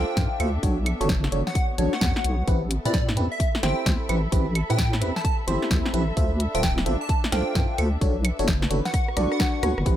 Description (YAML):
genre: UK garage, two-step garage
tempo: 130 BPM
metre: 4/4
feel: swing 64% on 16ths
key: unclear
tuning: A4 = 440 Hz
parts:
  - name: plucky unison lead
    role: melody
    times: 0.0-9.9 s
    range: D5 to A5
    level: -32 LUFS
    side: equal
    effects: phaser, ping-pong delay
  - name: FM electric piano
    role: stabs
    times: 0.0-10.0 s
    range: C4 to F5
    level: -28 LUFS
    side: right 1 dB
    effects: chorus, phaser
  - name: deep soft wobble bass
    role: bass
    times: 0.0-10.0 s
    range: D1 to A2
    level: -24 LUFS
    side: equal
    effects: chorus
  - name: muted studio string section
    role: texture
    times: 0.0-10.0 s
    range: B3 to C#6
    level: -35 LUFS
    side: equal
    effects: sidechain pumping
  - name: electronic kick drum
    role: drums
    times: 0.2-10.0 s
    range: none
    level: -25 LUFS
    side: equal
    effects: none
  - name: house drum kit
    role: drums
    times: 0.2-10.0 s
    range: claves, hi-hat, rim click, snare drum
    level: -28 LUFS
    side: equal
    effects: none
room: digital ambience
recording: none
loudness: -21 LUFS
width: side -11 dB against mid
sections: 0.0-10.0 A section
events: drum fill 8.9-9.9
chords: 0.0 Dm9; 0.6 Bm9; 2.5 Am9; 6.2 Dm9; 8.0 Bm9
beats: 0.17 | 0.63 1.09 1.55 2.02 | 2.48 2.94 3.40 3.86 | 4.32 4.78 5.25 5.71 | 6.17 6.63 7.09 7.55 | 8.02 8.48 8.94 9.40 | 9.86